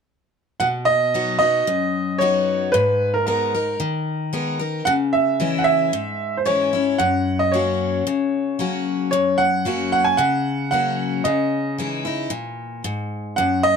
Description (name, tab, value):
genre	country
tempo	113 BPM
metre	4/4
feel	straight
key	B major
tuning	A4 = 441 Hz
part	bright upright piano	melody	0.6-13.8 s	A#4 to G#5	-19 LUFS	right 2 dB	none
part	picked steel-string acoustic guitar	accompaniment	0.6-13.8 s	F#2 to A#4	-22 LUFS	left 4 dB	none
room	light reverb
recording	close, detailed microphones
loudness	-18 LUFS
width	side -6 dB against mid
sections	0.6-13.8 A section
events	none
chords	0.6 B; 2.7 G#madd9; 4.9 C#m; 7.0 F#; 11.3 C#madd9